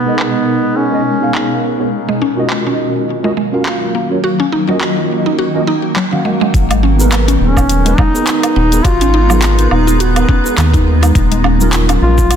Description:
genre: organic downtempo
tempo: 104 BPM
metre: 4/4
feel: swing 56% on 16ths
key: G# dorian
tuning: A4 = 440 Hz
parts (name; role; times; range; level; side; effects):
- warm duduk; melody; 0.0-1.6, 7.4-12.4 s; B3 to E#4; -17 LUFS; equal; vintage 12-bit sampler grit, ping-pong delay
- mellow tine electric piano; accompaniment; 0.0-12.4 s; F#3 to F#5; -18 LUFS; right 2 dB; ensemble chorus, sidechain pumping, low-pass filter, ping-pong delay
- granular cloud pad; sustained chords; 0.0-12.4 s; B2 to A#5; -19 LUFS; left 1 dB; built-in reverb, sidechain pumping
- afro-pop drum kit; drums; 0.2-12.4 s; handclaps, hi-hat, shaker, woodblock; -20 LUFS; right 1 dB; low-pass filter on hats, low-pass filter on perc, low-pass filter on snare
- mallet-like synth pluck; arpeggios; 2.1-12.0 s; D#3 to F#4; -19 LUFS; equal; chorus, ping-pong delay
- round analog bass; bass; 6.5-12.4 s; D#1 to D#2; -12 LUFS; equal; tube saturation
- electronic kick drum; drums; 6.5-12.3 s; none; -13 LUFS; equal; overdrive
room: moderate echo chamber reverb, RT60 1.7 s, digital ambience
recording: dense, heavily limited modern master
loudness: -11 LUFS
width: side -8 dB against mid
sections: 0.0-6.5 A section; 6.5-12.4 B section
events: filter sweep on ambient pad 0.0-6.5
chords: 0.0 G#madd9; 1.9 D#m7; 6.5 G#madd9; 11.2 D#m7

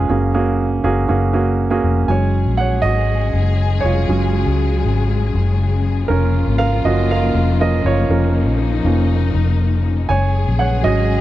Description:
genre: piano-driven pop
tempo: 120 BPM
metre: 4/4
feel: straight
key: unclear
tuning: A4 = 439 Hz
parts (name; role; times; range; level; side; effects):
- warm grand piano; accompaniment; 0.0-11.2 s; Ab2 to Ab5; -19 LUFS; right 5 dB; none
- vintage muted fingered electric bass; bass; 0.0-11.2 s; F1 to Db2; -17 LUFS; left 1 dB; none
- warm studio string section; sustained chords; 2.1-11.2 s; Db3 to Ab4; -23 LUFS; left 6 dB; none
room: little or no reverb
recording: dry, close 1970s-style studio recording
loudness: -14 LUFS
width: side -14 dB against mid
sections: 0.0-2.1 A section; 2.1-11.2 B section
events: grand piano solo 2.1-11.2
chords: 0.1 Gbadd9; 10.1 Gbsus2

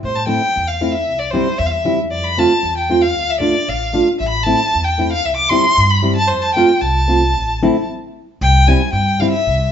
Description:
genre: klezmer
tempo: 114 BPM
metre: 2/4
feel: straight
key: A minor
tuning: A4 = 441 Hz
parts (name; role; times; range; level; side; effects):
- upright bass; bass; 0.0-9.7 s; A1 to A2; -19 LUFS; equal; none
- clear violin; melody; 0.1-9.7 s; C5 to D6; -16 LUFS; left 1 dB; none
- nylon-string guitar; accompaniment; 0.3-9.3 s; G3 to F4; -18 LUFS; equal; none
room: wet large studio reverb, RT60 1.1 s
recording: band playing live in one room, nothing above 7.6 kHz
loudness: -13 LUFS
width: side -8 dB against mid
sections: 0.0-8.4 A section; 8.4-9.7 B section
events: stop 7.9-8.4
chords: 0.0 Am; 1.1 C; 2.1 F; 3.2 Dm; 4.2 Am; 5.3 C; 6.3 F; 7.4 Am; 7.9 N.C.; 8.4 C

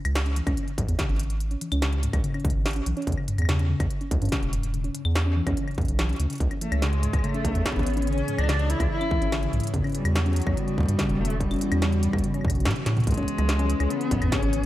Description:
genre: IDM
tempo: 144 BPM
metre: 4/4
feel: straight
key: C# minor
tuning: A4 = 445 Hz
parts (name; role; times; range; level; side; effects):
- harp-like synth pluck; arpeggios; 0.1-14.7 s; C#2 to C#4; -30 LUFS; left 2 dB; chorus, dub echo
- round analog bass; bass; 0.1-14.7 s; E1 to A2; -24 LUFS; equal; none
- industrial drum kit; drums; 0.1-14.7 s; claves, hi-hat, snare drum, toms; -32 LUFS; equal; dub echo
- electronic kick drum; drums; 0.5-14.4 s; none; -29 LUFS; equal; distortion
- warbly tape-like pad; sustained chords; 6.7-14.7 s; E3 to C#5; -34 LUFS; equal; chorus, built-in reverb, sidechain pumping
- warm cello; melody; 6.6-14.7 s; F#3 to E4; -29 LUFS; equal; tape echo
room: light reverb, digital ambience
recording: echo-heavy mix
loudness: -22 LUFS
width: side -14 dB against mid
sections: 0.0-13.1 A section; 13.1-14.7 B section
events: filter sweep on synth pluck 0.0-13.1; drum fill 12.7-13.1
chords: 0.0 C#m; 3.1 N.C.; 6.4 C#m; 9.7 Emadd9; 13.1 C#m

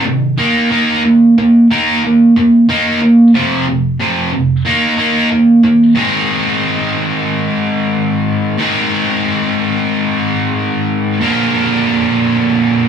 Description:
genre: rock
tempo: 92 BPM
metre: 4/4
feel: straight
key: unclear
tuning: A4 = 441 Hz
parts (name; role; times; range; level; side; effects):
- distorted electric guitar; solo; 0.0-12.9 s; F2 to Bb4; -10 LUFS; right 1 dB; distortion
room: moderate studio reverb, RT60 0.5 s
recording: rough rehearsal-room recording, warm saturation, small room ambience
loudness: -10 LUFS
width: side -8 dB against mid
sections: 0.0-6.0 A section; 6.0-12.9 B section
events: none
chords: 0.4 Eb5; 3.3 F5; 4.7 Eb5; 6.0 Ab; 11.2 Bb

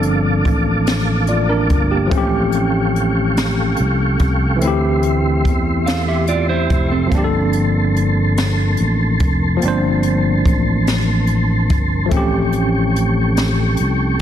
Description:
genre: slow six-eight R&B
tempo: 48 BPM (dotted quarters)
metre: 6/8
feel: straight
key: G dorian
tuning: A4 = 440 Hz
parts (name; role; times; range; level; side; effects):
- tine electric piano; accompaniment; 0.0-14.2 s; E3 to D5; -19 LUFS; left 1 dB; overdrive, medium stereo tremolo
- mellow tonewheel organ; sustained chords; 0.0-14.2 s; Bb3 to D6; -23 LUFS; equal; chorus vibrato, fast rotary speaker
- fingered electric bass; bass; 0.0-14.2 s; F1 to E2; -18 LUFS; equal; none
- jazz brush drum kit; drums; 0.0-14.2 s; hi-hat, kick drum, snare drum; -20 LUFS; equal; none
- mellow electric guitar; second line; 5.9-7.3 s; C4 to F5; -22 LUFS; right 7 dB; spring reverb
room: light reverb, studio ambience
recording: dense, heavily limited modern master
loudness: -14 LUFS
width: side -10 dB against mid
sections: 0.0-14.2 A section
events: none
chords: 0.0 Gm11; 2.1 A7alt; 4.6 Dm11; 7.1 Gm11; 12.1 A7alt

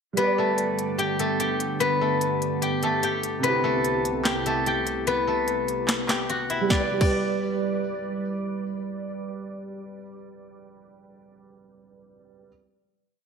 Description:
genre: hip hop, trap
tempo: 147 BPM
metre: 4/4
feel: half-time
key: G major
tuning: A4 = 440 Hz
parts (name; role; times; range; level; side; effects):
- dark concert grand piano; accompaniment; 0.1-12.5 s; C3 to D5; -30 LUFS; right 5 dB; ensemble chorus, low-pass filter
- steel-string zither; melody; 0.2-9.1 s; A3 to G5; -25 LUFS; left 3 dB; low-pass filter, ping-pong delay
- warbly tape-like pad; sustained chords; 0.5-9.7 s; C2 to D5; -32 LUFS; right 3 dB; chorus, built-in reverb
- trap drum kit; drums; 0.2-7.1 s; crash cymbal, handclaps, hi-hat, kick drum, snare drum; -26 LUFS; equal; gated reverb
room: moderate plate reverb, RT60 1.7 s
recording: bright 1980s-style digital production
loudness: -22 LUFS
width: side -6 dB against mid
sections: 0.2-6.7 breakdown; 6.7-10.0 final chord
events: none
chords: 0.2 G; 3.4 C; 6.7 G

